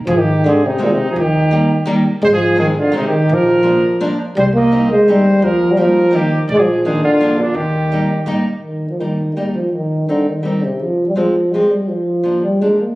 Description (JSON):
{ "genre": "alpine folk, alpine dance band", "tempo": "168 BPM", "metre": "3/4", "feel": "straight", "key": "Eb major", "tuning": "A4 = 440 Hz", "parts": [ { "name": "upright bass", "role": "bass", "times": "0.0-8.0 s", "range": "Ab1 to Eb2", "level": "-24 LUFS", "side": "equal", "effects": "none" }, { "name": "mellow euphonium", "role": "melody", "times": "0.1-13.0 s", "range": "Bb2 to Bb3", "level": "-14 LUFS", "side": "equal", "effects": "none" }, { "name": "warm trumpet", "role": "second line", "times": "0.1-8.3 s", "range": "D4 to Eb5", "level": "-23 LUFS", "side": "right 1 dB", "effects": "none" }, { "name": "fingerpicked steel-string acoustic guitar", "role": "accompaniment", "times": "0.4-12.8 s", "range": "Eb3 to Eb4", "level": "-20 LUFS", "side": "equal", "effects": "none" } ], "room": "moderate recital hall reverb, RT60 1.7 s", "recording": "recorded on a phone in the room, club reverb", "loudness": "-12 LUFS", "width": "side -19 dB against mid", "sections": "0.1-8.6 A section; 8.6-13.0 B section", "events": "none", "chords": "0.1 Ab; 1.2 Eb; 2.2 Ab; 3.3 Bb; 4.4 Cm; 5.4 Ebadd9; 6.5 Bb; 7.6 Eb; 9.7 Cm; 10.8 Fm; 11.9 Bb", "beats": "| 0.07 0.43 0.79 | 1.15 1.51 1.87 | 2.22 2.58 2.93 | 3.29 3.64 4.00 | 4.36 4.72 5.07 | 5.43 5.78 6.13 | 6.48 6.84 7.19 | 7.55 7.91 8.27 | 8.63 9.00 9.36 | 9.73 10.09 10.45 | 10.81 11.17 11.53 | 11.89 12.24 12.61" }